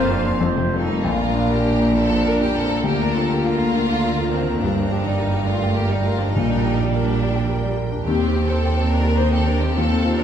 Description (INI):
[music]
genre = classical, romantic movement for piano and orchestra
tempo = 104 BPM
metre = 3/4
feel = uneven beats, rubato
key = Bb major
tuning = A4 = 440 Hz
[part]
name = clear studio violin section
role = melody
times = 0.0-10.2 s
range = F5 to Bb5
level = -38 LUFS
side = left 3 dB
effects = none
[part]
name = warm grand piano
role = melody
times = 0.0-10.2 s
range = Bb1 to C6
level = -22 LUFS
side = left 3 dB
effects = none
[part]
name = rich studio violin section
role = second line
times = 0.0-10.2 s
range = C4 to C5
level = -26 LUFS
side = left 1 dB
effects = none
[part]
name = rich studio viola section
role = accompaniment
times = 0.0-10.2 s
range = Eb3 to Eb4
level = -28 LUFS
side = right 1 dB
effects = none
[part]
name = mellow French horn section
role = sustained chords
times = 0.0-10.0 s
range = Bb3 to G4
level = -27 LUFS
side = left 2 dB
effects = none
[part]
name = clear trumpet section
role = stabs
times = 0.0-0.8 s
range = C5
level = -28 LUFS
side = right 1 dB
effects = none
[part]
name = rich studio cello section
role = bass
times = 0.0-10.2 s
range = Eb2 to D3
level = -25 LUFS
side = right 3 dB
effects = none
[part]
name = rich studio double bass section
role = bass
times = 0.0-10.2 s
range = F1 to Eb2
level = -24 LUFS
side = right 3 dB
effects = none
[part]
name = timpani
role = percussion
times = 6.4-7.2 s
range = Bb2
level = -28 LUFS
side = equal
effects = none
[sound]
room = wet recital hall reverb, RT60 1.5 s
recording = recorded in a church or concert hall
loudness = -17 LUFS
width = side -9 dB against mid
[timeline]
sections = 0.0-1.1 A section; 1.1-10.2 B section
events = none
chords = 0.4 F; 1.1 Bb; 2.9 Bb/D; 4.6 Gm; 6.4 Gm/Bb; 8.1 Cm/Eb